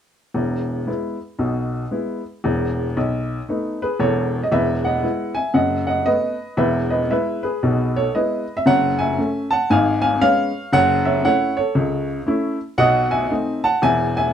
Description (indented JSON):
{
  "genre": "jazz, stride piano",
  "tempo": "116 BPM",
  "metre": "4/4",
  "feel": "swing 63% on 8ths",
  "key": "E major",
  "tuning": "A4 = 440 Hz",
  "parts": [
    { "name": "warm upright piano", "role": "solo", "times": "0.3-14.3 s", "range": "E1 to A5", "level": "-17 LUFS", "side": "equal", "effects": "none" }
  ],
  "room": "moderate club reverb, RT60 0.7 s",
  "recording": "none",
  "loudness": "-18 LUFS",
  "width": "side -9 dB against mid",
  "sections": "0.4-4.5 A section; 4.5-14.3 B section",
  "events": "none",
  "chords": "0.4 E; 2.4 B7/E; 4.5 E; 5.5 B7/F#; 6.6 E; 8.7 F#m; 9.7 C#7/G#; 10.7 F#m7; 12.8 B7b9; 13.8 E"
}